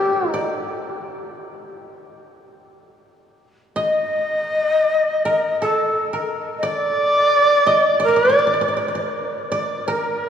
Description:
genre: japanese traditional, Japanese chamber music.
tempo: 78-88 BPM.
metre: 2/4.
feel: rubato.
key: D miyako bushi.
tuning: A4 = 440 Hz.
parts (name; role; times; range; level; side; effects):
bright reedy long shakuhachi; melody; 0.0-0.5, 3.8-10.3 s; G4 to Eb5; -18 LUFS; equal; none.
koto; second line; 0.0-10.3 s; G4 to Eb5; -25 LUFS; equal; none.
room: wet cathedral reverb, RT60 5.4 s.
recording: recorded in a church or concert hall, small room ambience.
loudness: -17 LUFS.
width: side -8 dB against mid.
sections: 0.0-9.5 A section.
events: none.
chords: none.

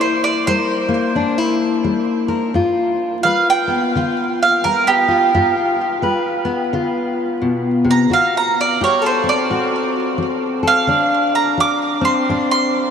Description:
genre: acoustic country blues, solo or duo.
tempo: 86 BPM.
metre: 4/4.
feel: swing 61% on 8ths.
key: G mixolydian.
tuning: A4 = 438 Hz.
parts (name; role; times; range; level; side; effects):
mandolin; melody; 0.0-12.9 s; B3 to D6; -17 LUFS; right 3 dB; ping-pong delay.
fingerpicked steel-string acoustic guitar; accompaniment; 0.0-12.9 s; G2 to B4; -18 LUFS; left 3 dB; none.
room: wet huge ambient reverb, RT60 8.9 s.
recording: dreamy mix soaked in reverb, vinyl crackle.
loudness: -14 LUFS.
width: side -7 dB against mid.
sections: 0.0-12.9 A section.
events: none.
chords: 0.0 C7; 2.6 G7; 8.1 D7.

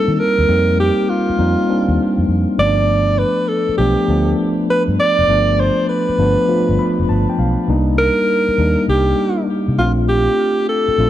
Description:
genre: R&B, new jack swing.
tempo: 100 BPM.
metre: 4/4.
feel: swing 67% on 16ths.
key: C dorian.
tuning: A4 = 442 Hz.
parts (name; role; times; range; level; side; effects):
bright alto saxophone; melody; 0.0-11.1 s; F4 to D5; -17 LUFS; right 1 dB; ping-pong delay.
mellow tine electric piano; accompaniment; 0.0-11.1 s; F3 to B5; -18 LUFS; left 1 dB; auto-pan.
vintage muted fingered electric bass; bass; 0.1-11.1 s; F1 to Eb3; -18 LUFS; equal; none.
room: moderate plate reverb, RT60 3.0 s.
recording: dark, warm production.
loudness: -13 LUFS.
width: side -12 dB against mid.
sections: 0.0-7.7 A section; 7.7-11.1 B section.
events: tine electric piano fill 6.5-7.7.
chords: 0.0 Eb6; 2.6 G7; 7.7 Cm7; 9.8 Bbmaj7.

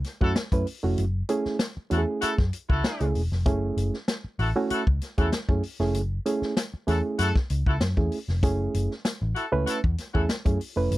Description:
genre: funk.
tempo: 97 BPM.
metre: 4/4.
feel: straight.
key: F# minor.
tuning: A4 = 440 Hz.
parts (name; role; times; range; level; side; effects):
vintage drum kit; drums; 0.0-11.0 s; hi-hat, kick drum, snare drum; -27 LUFS; left 1 dB; none.
clear horn section; second line; 0.2-10.2 s; E4 to A4; -28 LUFS; left 2 dB; none.
reed electric piano; stabs; 0.2-11.0 s; A3 to B4; -27 LUFS; right 3 dB; none.
vintage muted picked electric bass; bass; 0.2-11.0 s; E1 to F#2; -26 LUFS; equal; none.
room: little or no reverb.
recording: dry, close 1970s-style studio recording.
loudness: -23 LUFS.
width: side -17 dB against mid.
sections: 0.0-11.0 A section.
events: none.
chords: 0.0 F#m7.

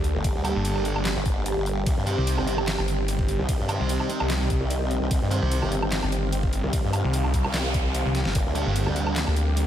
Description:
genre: heavy wobble dubstep.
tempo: 148 BPM.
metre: 4/4.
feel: half-time.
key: unclear.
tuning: A4 = 440 Hz.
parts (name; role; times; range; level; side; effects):
supersaw chords; sustained chords; 0.0-9.7 s; D3 to A4; -32 LUFS; equal; sidechain pumping, low-pass filter.
snarling distorted saw bass; bass; 0.0-9.7 s; G1 to D2; -25 LUFS; equal; distortion, overdrive.
dubstep drum kit; drums; 0.0-9.7 s; handclaps, hi-hat, ride cymbal, snare drum, woodblock; -32 LUFS; right 1 dB; overdrive.
granular cloud pad; texture; 0.0-9.7 s; C4 to Bb5; -32 LUFS; right 1 dB; built-in reverb, ensemble chorus, sidechain pumping.
formant-sweep wobble bass; bass; 0.1-9.3 s; G1 to G2; -27 LUFS; equal; chorus, overdrive.
electronic kick drum; drums; 0.2-8.4 s; none; -26 LUFS; equal; overdrive.
thick fuzz guitar; stabs; 0.4-5.7, 8.6-9.1 s; G3 to C5; -34 LUFS; right 4 dB; distortion, tape echo.
noise sweep; sound effects; 7.1-8.4 s; none; -36 LUFS; right 2 dB; none.
room: light reverb, digital ambience.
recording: none.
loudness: -22 LUFS.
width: side -10 dB against mid.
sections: 0.0-9.7 A section.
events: noise sweep 7.1-8.4; drum fill 8.1.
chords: 0.0 Gm; 1.9 Cm; 8.4 Gm.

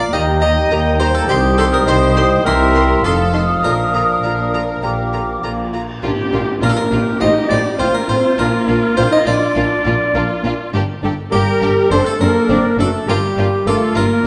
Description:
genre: cinematic, playful, whimsical film cue.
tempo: 102 BPM.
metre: 4/4.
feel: straight.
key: Bb major.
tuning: A4 = 439 Hz.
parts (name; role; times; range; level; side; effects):
harpsichord; melody; 0.0-14.3 s; G4 to Eb5; -24 LUFS; equal; none.
mellow hollow flute section; second line; 0.0-14.3 s; G4 to Eb6; -25 LUFS; equal; none.
rich chamber violin section; second line; 0.0-14.1 s; Bb3 to Eb5; -28 LUFS; equal; none.
warm clarinet; second line; 0.0-14.3 s; G4 to Eb5; -24 LUFS; equal; none.
warm oboe; second line; 0.0-13.8 s; E5 to D6; -26 LUFS; equal; none.
dark bassoon; accompaniment; 0.0-13.8 s; Bb3 to G4; -27 LUFS; equal; none.
mellow French horn section; sustained chords; 0.0-14.3 s; F3 to E4; -23 LUFS; equal; none.
rich chamber cello section; bass; 0.0-14.0 s; C2 to Bb2; -25 LUFS; equal; none.
warm chamber double bass section; bass; 0.0-14.3 s; F1 to Eb2; -24 LUFS; equal; none.
rich chamber violin section; melody; 0.1-14.0 s; D4 to C6; -29 LUFS; equal; none.
rich studio viola section; accompaniment; 0.1-14.2 s; D3 to Bb4; -26 LUFS; equal; none.
cymbal swell and tam-tam; percussion; 3.6-8.3 s; none; -30 LUFS; equal; none.
room: wet scoring stage reverb, RT60 1.5 s.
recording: nothing above 10.5 kHz.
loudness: -15 LUFS.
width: mono.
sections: 0.0-6.0 A section; 6.0-14.3 B section.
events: band accent 6.0-6.6.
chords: 0.1 Eb; 1.3 Cm; 2.5 C7; 3.0 F7; 3.6 Bb; 7.2 F/A; 8.4 Bb; 10.7 Gm; 11.9 D7/F#; 13.1 Gm7.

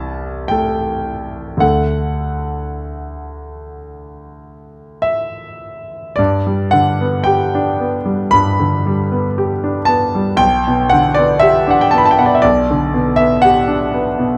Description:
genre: classical, romantic nocturne for solo piano.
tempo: 52-61 BPM.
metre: 4/4.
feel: rubato.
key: G major.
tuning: A4 = 439 Hz.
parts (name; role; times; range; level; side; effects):
clear concert grand piano; solo; 0.0-14.4 s; B1 to B5; -16 LUFS; equal; none.
room: light reverb.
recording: close, detailed microphones.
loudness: -15 LUFS.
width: mono.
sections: 0.0-6.2 A section; 6.2-14.4 B section.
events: none.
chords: 0.0 Am/C; 1.6 D; 6.2 G; 10.4 G/B.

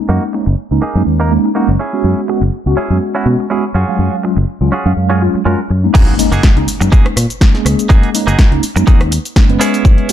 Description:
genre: filtered disco house.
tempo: 123 BPM.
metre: 4/4.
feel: swing 54% on 16ths.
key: F# major.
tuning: A4 = 442 Hz.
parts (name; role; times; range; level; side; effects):
mellow tine electric piano; accompaniment; 0.0-10.1 s; F#3 to E#5; -16 LUFS; right 1 dB; medium stereo tremolo, phaser, sidechain pumping, low-pass filter.
direct-recorded clean electric guitar; riff; 0.1-10.1 s; A#3 to A#4; -21 LUFS; right 4 dB; sidechain pumping, low-pass filter.
fingered electric bass; bass; 0.1-9.9 s; F#1 to B2; -14 LUFS; equal; tube saturation, sidechain pumping, low-pass filter.
electronic kick drum; drums; 5.9-10.0 s; none; -8 LUFS; equal; none.
impact; sound effects; 5.9-7.9 s; none; -21 LUFS; equal; none.
punchy analog drum machine; drums; 6.0-10.1 s; crash cymbal, hi-hat, rim click, shaker, snare drum; -19 LUFS; equal; overdrive, sidechain pumping on hats, sidechain pumping on cymbals, sidechain pumping on perc.
room: digital ambience.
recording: dark, warm production.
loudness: -10 LUFS.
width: side -11 dB against mid.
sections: 0.0-5.9 A section; 5.9-10.1 B section.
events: filter sweep 0.0-5.9; drop 5.9-10.1; impact 5.9-7.9.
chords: 0.0 F#69; 1.8 E6/F#; 3.8 D#m11/F# (rootless); 5.9 F#69; 9.6 E6.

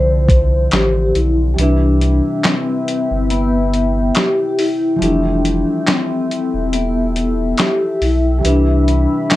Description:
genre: lo-fi hip hop.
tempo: 70 BPM.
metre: 4/4.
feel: swing 56% on 16ths.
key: C major.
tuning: A4 = 436 Hz.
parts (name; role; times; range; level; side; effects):
vibraphone with soft mallets; melody; 0.0-9.4 s; B3 to C5; -18 LUFS; left 2 dB; low-pass filter, plate reverb.
felt-muted upright piano; accompaniment; 0.0-9.4 s; C3 to B4; -22 LUFS; right 1 dB; cassette tape, low-pass filter, plate reverb.
dark analog pad; sustained chords; 0.0-9.4 s; D3 to B5; -24 LUFS; left 2 dB; chorus, phaser, low-pass filter, plate reverb.
warm sub bass; bass; 0.0-9.1 s; E1 to C2; -16 LUFS; equal; none.
dusty soul sampler-style drum kit; drums; 0.3-9.4 s; handclaps, hi-hat, kick drum, snare drum; -17 LUFS; equal; none.
room: light reverb.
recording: cassette tape.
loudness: -13 LUFS.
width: side -15 dB against mid.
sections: 0.0-1.6 A section; 1.6-9.4 B section.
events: kick muted 1.6-9.4.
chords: 0.0 Dm9; 1.6 Cmaj7; 5.0 Fmaj9; 8.4 Cmaj7.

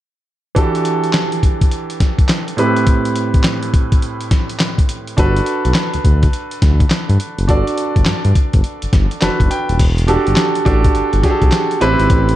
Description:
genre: R&B, new jack swing.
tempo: 104 BPM.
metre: 4/4.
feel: swing 64% on 16ths.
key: E minor.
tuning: A4 = 442 Hz.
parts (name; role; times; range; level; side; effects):
clear baby grand piano; accompaniment; 0.5-12.4 s; A2 to A5; -18 LUFS; right 2 dB; none.
dusty soul sampler-style drum kit; drums; 0.6-12.4 s; crash cymbal, handclaps, hi-hat, kick drum, snare drum; -15 LUFS; equal; none.
smooth synth bass; bass; 5.2-12.4 s; D#1 to G2; -15 LUFS; equal; none.
room: light reverb, digital ambience.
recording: dark, warm production.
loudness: -13 LUFS.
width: side -14 dB against mid.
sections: 0.6-9.8 A section; 9.8-12.4 B section.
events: grand piano fill 8.9-9.8.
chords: 0.6 Em11; 2.6 Am9; 5.2 Gmaj7; 9.8 Em11; 11.8 Am9.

